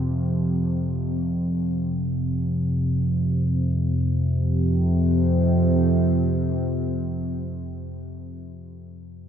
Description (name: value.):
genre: ambient.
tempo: free time.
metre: none.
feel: none.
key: unclear.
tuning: A4 = 439 Hz.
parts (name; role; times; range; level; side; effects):
analog drone; solo; 0.0-7.7 s; F2 to C3; -21 LUFS; equal; chorus, ping-pong delay.
room: wet cathedral reverb, RT60 5.7 s.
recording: none.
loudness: -21 LUFS.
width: side -8 dB against mid.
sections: 0.0-4.0 A section; 4.0-8.2 B section.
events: none.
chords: 0.0 F5.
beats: free time.